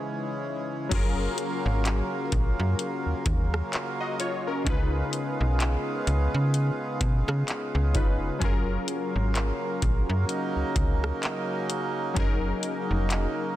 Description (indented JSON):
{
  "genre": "contemporary R&B",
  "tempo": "64 BPM",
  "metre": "4/4",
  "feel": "swing 58% on 16ths",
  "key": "F# major",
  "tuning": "A4 = 443 Hz",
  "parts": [
    { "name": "warm analog keys", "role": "accompaniment", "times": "0.0-13.6 s", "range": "C#3 to D#5", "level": "-32 LUFS", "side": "left 3 dB", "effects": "chorus" },
    { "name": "hand-pumped harmonium", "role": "sustained chords", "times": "0.0-13.6 s", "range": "C#3 to E#4", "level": "-32 LUFS", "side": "right 2 dB", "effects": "sidechain pumping" },
    { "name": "slap-like FM bass", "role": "bass", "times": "0.9-13.3 s", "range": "E#1 to C#3", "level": "-26 LUFS", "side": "equal", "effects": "none" },
    { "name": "booming analog drum machine", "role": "drums", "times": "0.9-13.4 s", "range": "crash cymbal, handclaps, hi-hat, kick drum, rim click", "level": "-28 LUFS", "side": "equal", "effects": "soft clipping on snare" }
  ],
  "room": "digital ambience",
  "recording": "dense, heavily limited modern master",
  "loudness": "-24 LUFS",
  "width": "side -14 dB against mid",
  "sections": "0.9-13.6 A section",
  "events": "break 0.0-0.9",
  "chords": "0.0 C#m7; 0.9 F#maj7; 4.7 C#7; 8.4 F#maj7; 12.2 F#6"
}